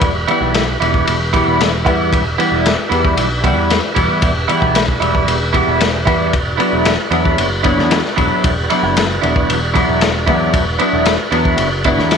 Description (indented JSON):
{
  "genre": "psychedelic rock",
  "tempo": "114 BPM",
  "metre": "4/4",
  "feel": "straight",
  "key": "E minor",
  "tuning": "A4 = 436 Hz",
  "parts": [
    { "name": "bright tonewheel organ", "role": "sustained chords", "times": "0.0-12.2 s", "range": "F#4 to B5", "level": "-24 LUFS", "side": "right 11 dB", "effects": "chorus vibrato, fast rotary speaker" },
    { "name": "semi-hollow electric guitar", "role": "riff", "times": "0.0-12.2 s", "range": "E3 to E4", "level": "-15 LUFS", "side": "equal", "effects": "flanger, double-tracked left and right" },
    { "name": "overdriven picked electric bass", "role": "bass", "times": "0.0-12.2 s", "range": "E1 to E2", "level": "-20 LUFS", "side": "right 1 dB", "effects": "none" },
    { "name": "crunchy breakbeat drum kit", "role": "drums", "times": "0.0-12.2 s", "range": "kick drum, ride cymbal, snare drum", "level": "-17 LUFS", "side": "left 3 dB", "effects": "none" }
  ],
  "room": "light reverb, studio ambience",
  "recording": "1960s-style stereo",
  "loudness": "-12 LUFS",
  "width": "side -6 dB against mid",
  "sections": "0.0-12.2 A section",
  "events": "none",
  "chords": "0.0 Em; 6.3 Bm/E"
}